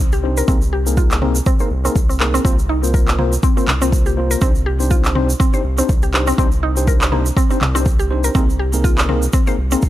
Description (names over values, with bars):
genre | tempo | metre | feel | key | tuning
afro house | 122 BPM | 4/4 | swing 56% on 16ths | C minor | A4 = 441 Hz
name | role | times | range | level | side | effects
round analog bass | bass | 0.0-9.9 s | C2 | -19 LUFS | equal | sidechain pumping
mallet-like synth pluck | arpeggios | 0.1-9.8 s | Bb3 to C5 | -23 LUFS | equal | chorus, phaser, sidechain pumping, analog delay
egg shaker | percussion | 0.1-9.9 s | none | -28 LUFS | right 3 dB | none
tine electric piano | stabs | 0.2-9.8 s | Bb3 to C5 | -23 LUFS | left 2 dB | overdrive, medium stereo tremolo, sidechain pumping, low-pass filter, analog delay
electronic kick drum | drums | 0.5-9.9 s | none | -16 LUFS | equal | none
afro-pop drum kit | drums | 1.1-9.2 s | handclaps, toms | -20 LUFS | equal | none
room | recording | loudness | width
little or no reverb | dry, gritty hardware recording | -14 LUFS | side -14 dB against mid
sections
0.0-9.9 A section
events
filter sweep on synth arpeggio sound 0.0-9.9; filter sweep on tine electric piano 0.0-9.9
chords
0.5 Abadd9/C; 2.5 Bbsus2/C; 4.4 Cmadd9; 8.4 Abadd9/C